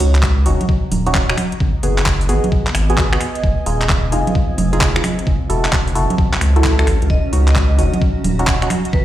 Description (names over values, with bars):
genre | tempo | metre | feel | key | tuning
UK garage, two-step garage | 131 BPM | 4/4 | swing 65% on 16ths | unclear | A4 = 440 Hz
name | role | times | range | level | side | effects
percussive organ stab | stabs | 0.0-8.7 s | Cb4 to A4 | -22 LUFS | right 1 dB | chorus, phaser, digital delay
saturated sub bass | bass | 0.0-9.0 s | Eb1 to Db2 | -16 LUFS | equal | sidechain pumping
garage drum kit | drums | 0.0-8.9 s | congas, finger snaps, handclaps, hi-hat | -20 LUFS | right 1 dB | none
granular cloud pad | texture | 1.4-9.0 s | Cb4 to Bb5 | -28 LUFS | right 1 dB | built-in reverb, sidechain pumping
electronic kick drum | drums | 0.2-9.0 s | none | -17 LUFS | equal | none
vibraphone with medium hard mallets | melody | 7.1-9.0 s | Cb5 to Eb5 | -27 LUFS | equal | ping-pong delay
room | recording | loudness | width
light reverb | played on a big sound system in a bare room, large studio reverb | -14 LUFS | side -13 dB against mid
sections
0.0-9.0 A section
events
none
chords
0.0 Ebm7; 1.4 Abm7; 3.2 Fm7; 5.0 Gbm7; 7.1 Ebm7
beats
0.23 0.69 1.15 | 1.60 2.06 2.52 2.98 | 3.44 3.89 4.35 4.81 | 5.27 5.73 6.18 6.64 | 7.10 7.56 8.02 8.47 | 8.93